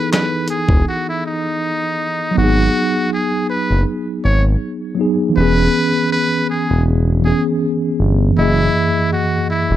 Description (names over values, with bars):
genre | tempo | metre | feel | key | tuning
lo-fi hip hop | 80 BPM | 4/4 | swing 55% on 16ths | unclear | A4 = 439 Hz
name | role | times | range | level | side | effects
trumpet with metal mute | melody | 0.0-9.8 s | D#4 to C#5 | -20 LUFS | equal | none
mellow tine electric piano | accompaniment | 0.0-9.8 s | F#2 to D#5 | -18 LUFS | equal | medium stereo tremolo, cassette tape
dusty soul sampler-style drum kit | drums | 0.1-0.8 s | handclaps, hi-hat, kick drum, snare drum | -15 LUFS | equal | none
smooth synth bass | bass | 0.7-9.8 s | E1 to G#1 | -15 LUFS | equal | none
room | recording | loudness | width
light reverb | none | -14 LUFS | side -12 dB against mid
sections
0.0-2.4 A section; 2.4-9.8 B section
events
break 0.9-2.4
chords
0.0 Emaj7; 2.4 G#m7; 5.4 E6; 8.4 F#13